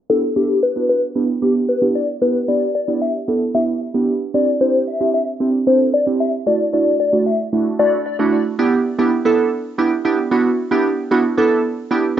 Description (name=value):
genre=pop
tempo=113 BPM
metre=4/4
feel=straight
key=G major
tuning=A4 = 439 Hz
part: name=plucky unison lead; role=melody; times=0.1-7.9 s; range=G4 to E5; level=-18 LUFS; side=left 4 dB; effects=tape echo
part: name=glassy digital keys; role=accompaniment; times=0.1-12.2 s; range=A3 to A4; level=-17 LUFS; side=right 3 dB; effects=chorus, cassette tape
room=moderate spring reverb, RT60 1.1 s, digital ambience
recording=home recording on cassette, low-pass filter, nothing above 7.8 kHz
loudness=-15 LUFS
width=side -10 dB against mid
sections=0.1-8.6 A section; 8.6-12.2 B section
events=filter sweep 0.1-8.6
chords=0.1 G6; 4.3 Cadd9; 6.5 Dadd9; 8.6 G6